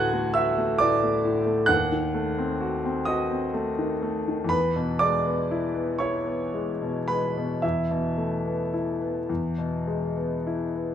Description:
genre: classical, romantic nocturne for solo piano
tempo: 34-46 BPM (dotted quarters)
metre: 12/8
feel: rubato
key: unclear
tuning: A4 = 440 Hz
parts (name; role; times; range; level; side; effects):
- clear concert grand piano; solo; 0.0-10.9 s; D2 to A6; -23 LUFS; equal; none
room: moderate recital hall reverb, RT60 1.5 s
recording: minimal, uncompressed stereo recording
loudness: -23 LUFS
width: side -9 dB against mid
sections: 0.0-10.9 A section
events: none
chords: 0.0 D; 1.7 D#dim7; 4.5 E; 7.6 Esus4; 9.3 E

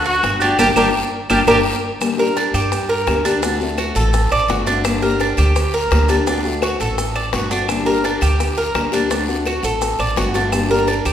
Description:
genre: latin, Cuban son and guajira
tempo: 169 BPM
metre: 4/4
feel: straight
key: G harmonic minor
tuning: A4 = 440 Hz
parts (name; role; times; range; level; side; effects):
- warm trumpet; melody; 0.0-1.6 s; F#4 to G4; -19 LUFS; equal; none
- Cuban tres; arpeggios; 0.0-11.1 s; D4 to D5; -19 LUFS; right 2 dB; none
- upright bass; bass; 0.0-11.1 s; G1 to G2; -21 LUFS; equal; none
- maracas; percussion; 0.1-11.1 s; none; -33 LUFS; right 4 dB; none
- bongos; percussion; 0.2-11.1 s; none; -26 LUFS; left 4 dB; none
- claves; percussion; 0.2-11.1 s; none; -29 LUFS; right 2 dB; none
- guiro; percussion; 0.2-11.1 s; none; -31 LUFS; left 3 dB; none
- nylon-string guitar; accompaniment; 0.4-11.1 s; D3 to G4; -22 LUFS; left 3 dB; none
room: wet recital hall reverb, RT60 1.4 s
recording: recorded in a church or concert hall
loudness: -15 LUFS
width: side -10 dB against mid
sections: 0.0-2.0 A section; 2.0-11.1 B section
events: band accent 0.6-2.0; drum fill 0.9-2.0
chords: 0.0 D; 0.6 Gm; 3.4 D7; 4.8 Gm; 6.3 D7; 7.7 Gm; 9.1 D7; 10.5 Gm

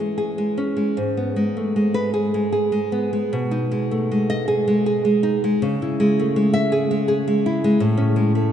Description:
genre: romantic piece for solo classical guitar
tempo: 76-84 BPM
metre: 3/4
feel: rubato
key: unclear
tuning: A4 = 441 Hz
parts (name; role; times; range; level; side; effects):
- nylon-string guitar; solo; 0.0-8.5 s; G#2 to E5; -18 LUFS; equal; none
room: wet cathedral reverb, RT60 4.7 s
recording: recorded in a church or concert hall, nothing above 10.4 kHz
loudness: -18 LUFS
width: side -9 dB against mid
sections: 0.0-8.5 A section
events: none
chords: 0.0 C#m/E; 1.0 G#m; 3.3 G#m/B; 5.6 C#m; 7.8 Amaj7

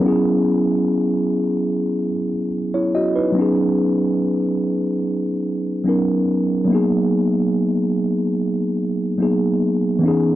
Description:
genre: R&B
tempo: 72 BPM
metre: 4/4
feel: straight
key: G# minor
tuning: A4 = 441 Hz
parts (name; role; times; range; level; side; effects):
- mellow tine electric piano; solo; 0.0-10.4 s; E3 to D#5; -17 LUFS; equal; slow stereo tremolo, tape echo
room: little or no reverb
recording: dry, gritty hardware recording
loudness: -17 LUFS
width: side -14 dB against mid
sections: 0.0-10.0 A section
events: none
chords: 0.0 F#7sus4; 3.4 B69; 6.7 G#m9

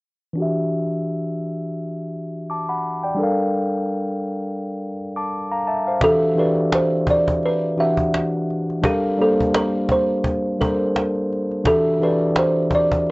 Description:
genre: lo-fi hip hop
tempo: 85 BPM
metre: 4/4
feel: swing 55% on 16ths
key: E minor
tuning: A4 = 440 Hz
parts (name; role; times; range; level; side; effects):
- mellow tine electric piano; accompaniment; 0.3-13.1 s; E3 to D6; -21 LUFS; left 1 dB; cassette tape, low-pass filter
- buzzing kalimba; melody; 6.0-13.1 s; G4 to E5; -20 LUFS; right 1 dB; low-pass filter
- cajon; drums; 6.0-13.1 s; none; -23 LUFS; equal; vintage 12-bit sampler grit
room: moderate studio reverb, RT60 0.5 s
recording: dry, gritty hardware recording, nothing above 7.9 kHz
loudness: -18 LUFS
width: side -23 dB against mid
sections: 0.4-6.0 A section; 6.0-13.1 B section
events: filter sweep on tine electric piano 0.4-6.0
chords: 0.4 Em7; 3.2 Gm7; 6.0 Em7; 8.8 Gm7; 11.7 Em7

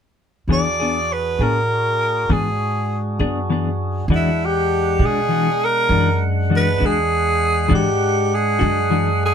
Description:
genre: blues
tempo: 67 BPM (dotted quarters)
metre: 12/8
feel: straight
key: E mixolydian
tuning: A4 = 440 Hz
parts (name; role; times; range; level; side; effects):
- growling tenor saxophone; melody; 0.5-9.3 s; E4 to D5; -19 LUFS; right 1 dB; none
- clean electric guitar; accompaniment; 0.5-9.1 s; E3 to G#4; -21 LUFS; left 5 dB; tremolo
- tonewheel organ; sustained chords; 0.5-9.3 s; G#3 to F#5; -26 LUFS; right 1 dB; slow rotary speaker
- upright bass; bass; 0.5-9.3 s; E2 to B2; -22 LUFS; equal; none
room: moderate studio reverb, RT60 0.6 s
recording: band playing live in one room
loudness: -16 LUFS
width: side -7 dB against mid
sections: 0.5-4.1 A section; 4.1-9.3 B section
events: none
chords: 0.5 E7; 4.1 E9

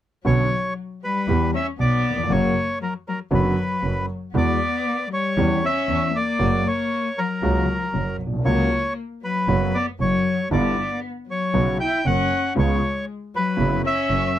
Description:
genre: tango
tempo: 117 BPM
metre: 4/4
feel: rubato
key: B harmonic minor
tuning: A4 = 440 Hz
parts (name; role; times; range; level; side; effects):
- warm concert grand piano; accompaniment; 0.2-14.3 s; F#1 to G4; -23 LUFS; equal; none
- bandoneon; melody; 0.3-14.4 s; A#4 to G5; -24 LUFS; equal; none
- warm cello; second line; 0.3-14.4 s; F#3 to E4; -26 LUFS; left 4 dB; none
- clear double bass; bass; 0.3-14.3 s; F#1 to E2; -25 LUFS; right 2 dB; none
room: little or no reverb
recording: close, detailed microphones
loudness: -20 LUFS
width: side -11 dB against mid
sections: 0.3-14.4 A section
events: none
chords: 0.3 Bmadd9; 1.3 Em; 2.3 F#; 3.3 Bmadd9/F#; 4.3 Eadd9; 5.4 C#dim/E; 6.4 F#; 9.5 Bsus2/F#; 10.5 Em7/G; 11.5 Bsus2; 12.6 C#7; 13.6 F#7sus4

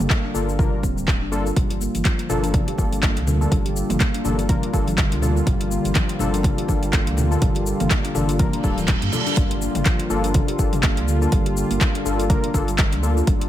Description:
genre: afro house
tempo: 123 BPM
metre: 4/4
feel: swing 58% on 16ths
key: G minor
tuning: A4 = 438 Hz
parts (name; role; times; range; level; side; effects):
- handpan; arpeggios; 0.0-13.4 s; D3 to G4; -27 LUFS; equal; vintage 12-bit sampler grit, sidechain pumping, ping-pong delay
- warm analog keys; stabs; 0.0-13.2 s; Bb3 to Bb4; -28 LUFS; left 3 dB; chorus, sidechain pumping, ping-pong delay
- warm sub bass; bass; 0.0-13.5 s; D1 to G2; -25 LUFS; equal; sidechain pumping
- deep house drum kit; drums; 0.0-13.5 s; handclaps, hi-hat, shaker, toms; -27 LUFS; left 1 dB; overdrive
- electronic kick drum; drums; 0.1-13.4 s; none; -20 LUFS; equal; overdrive
- warm analog pad; sustained chords; 1.6-13.5 s; D3 to F4; -29 LUFS; equal; chorus, sidechain pumping
- congas; percussion; 1.6-9.2 s; none; -30 LUFS; left 1 dB; none
- reverse cymbal and impact; sound effects; 8.6-11.3 s; none; -29 LUFS; right 5 dB; none
room: digital ambience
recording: none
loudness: -18 LUFS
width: side -12 dB against mid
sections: 0.0-9.4 A section; 9.4-13.5 B section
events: reverse cymbal 8.6-9.4; drop 9.4-13.5; impact 9.4-11.3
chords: 0.0 Gm7

